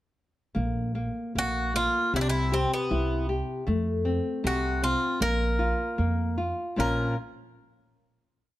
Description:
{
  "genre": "fado-style ballad",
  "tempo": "78 BPM",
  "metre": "2/4",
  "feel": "rubato",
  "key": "unclear",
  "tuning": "A4 = 440 Hz",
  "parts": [
    { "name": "nylon-string guitar", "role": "accompaniment", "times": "0.5-7.1 s", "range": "Bb2 to G4", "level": "-29 LUFS", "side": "left 1 dB", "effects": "none" },
    { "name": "upright bass", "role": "bass", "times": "0.6-7.1 s", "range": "Bb1 to F2", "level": "-29 LUFS", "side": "right 1 dB", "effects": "none" },
    { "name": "Irish bouzouki", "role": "melody", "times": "1.4-7.2 s", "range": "Cb4 to Bb4", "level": "-28 LUFS", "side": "equal", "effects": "none" }
  ],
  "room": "light reverb",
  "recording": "close, detailed microphones",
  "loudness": "-25 LUFS",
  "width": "side -15 dB against mid",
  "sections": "0.6-6.8 A section; 6.8-8.3 final chord",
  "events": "none",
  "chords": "0.6 Bb5; 2.1 C; 3.7 F; 5.2 Bb5; 6.8 Bbm"
}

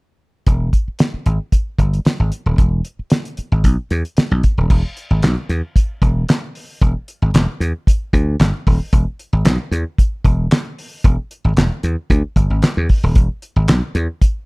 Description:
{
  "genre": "funk",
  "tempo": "114 BPM",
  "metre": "4/4",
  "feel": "straight",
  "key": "unclear",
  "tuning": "A4 = 441 Hz",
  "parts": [
    { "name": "dry thumbed slap bass", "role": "bass", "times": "0.5-14.1 s", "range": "D#1 to E2", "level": "-16 LUFS", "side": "equal", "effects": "none" },
    { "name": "cloth-damped thuddy drum kit", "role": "drums", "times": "0.5-14.3 s", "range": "crash cymbal, handclaps, hi-hat, kick drum, snare drum", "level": "-15 LUFS", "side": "equal", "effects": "none" }
  ],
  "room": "little or no reverb",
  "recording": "none",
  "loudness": "-15 LUFS",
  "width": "side -30 dB against mid",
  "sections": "0.5-4.7 A section; 4.7-14.5 B section",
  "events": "none",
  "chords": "none"
}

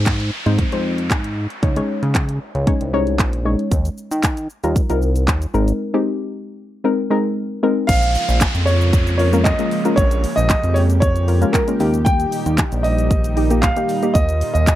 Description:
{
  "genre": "dance-pop",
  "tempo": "115 BPM",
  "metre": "4/4",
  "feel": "straight",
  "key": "Bb dorian",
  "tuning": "A4 = 440 Hz",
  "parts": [
    { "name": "chorused synth bass", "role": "bass", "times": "0.0-14.7 s", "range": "Ab1 to Eb3", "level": "-18 LUFS", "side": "equal", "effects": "sidechain pumping" },
    { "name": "downlifter", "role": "sound effects", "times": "0.0-3.7, 7.9-12.1 s", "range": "none", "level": "-30 LUFS", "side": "equal", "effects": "none" },
    { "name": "pop drum kit", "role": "drums", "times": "0.1-14.8 s", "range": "crash cymbal, handclaps, hi-hat, kick drum, shaker", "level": "-19 LUFS", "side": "equal", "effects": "none" },
    { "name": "soft round pluck", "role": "accompaniment", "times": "0.5-14.6 s", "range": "G3 to Db5", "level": "-20 LUFS", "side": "left 2 dB", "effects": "chorus, sidechain pumping" },
    { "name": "warm concert grand piano", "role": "melody", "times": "7.9-14.8 s", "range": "Bb4 to G5", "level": "-21 LUFS", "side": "right 2 dB", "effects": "slapback echo" },
    { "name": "lush unison pad", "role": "sustained chords", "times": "7.9-14.8 s", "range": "Bb2 to G4", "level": "-26 LUFS", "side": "right 1 dB", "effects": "chorus, sidechain pumping" }
  ],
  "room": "little or no reverb",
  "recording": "dry, close 1970s-style studio recording",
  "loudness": "-16 LUFS",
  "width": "side -13 dB against mid",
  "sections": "0.0-7.9 A section; 7.9-14.8 B section",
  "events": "none",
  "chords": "0.0 Ab; 1.6 Dbsus2; 3.7 Ebadd9; 5.5 Abadd9; 7.9 Bbm7; 11.8 Eb"
}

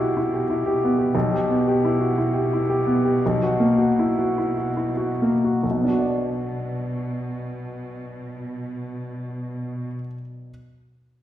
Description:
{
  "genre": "classical, romantic movement for piano and orchestra",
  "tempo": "66-93 BPM",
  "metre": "3/4",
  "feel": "rubato",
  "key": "B minor",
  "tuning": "A4 = 440 Hz",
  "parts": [
    { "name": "warm grand piano", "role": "melody", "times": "0.0-10.5 s", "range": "B1 to D5", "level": "-20 LUFS", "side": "equal", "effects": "none" },
    { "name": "warm studio cello section", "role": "bass", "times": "0.0-9.9 s", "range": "B2", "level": "-29 LUFS", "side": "equal", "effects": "none" }
  ],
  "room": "wet recital hall reverb, RT60 1.4 s",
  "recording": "recorded in a church or concert hall",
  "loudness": "-20 LUFS",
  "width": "side -12 dB against mid",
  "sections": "0.0-5.6 A section; 5.6-10.5 B section",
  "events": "slowing down 0.2-5.6",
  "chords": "0.0 Em/B"
}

